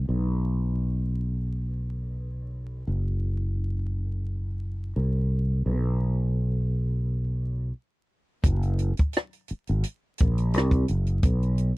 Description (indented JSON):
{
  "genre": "R&B, neo-soul",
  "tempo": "86 BPM",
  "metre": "4/4",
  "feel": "swing 55% on 16ths",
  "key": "unclear",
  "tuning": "A4 = 440 Hz",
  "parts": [
    { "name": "fretless electric bass", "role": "bass", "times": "0.0-11.7 s", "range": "F#1 to C2", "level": "-25 LUFS", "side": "equal", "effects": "lush chorus" },
    { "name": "compact cocktail drum kit", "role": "drums", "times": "8.4-11.8 s", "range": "hi-hat, kick drum, rim click", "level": "-23 LUFS", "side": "equal", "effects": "none" }
  ],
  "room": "little or no reverb",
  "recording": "dry, close 1970s-style studio recording, vinyl crackle",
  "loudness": "-24 LUFS",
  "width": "side -21 dB against mid",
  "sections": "0.0-8.4 A section; 8.4-11.8 B section",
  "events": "break 7.7-8.4",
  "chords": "none"
}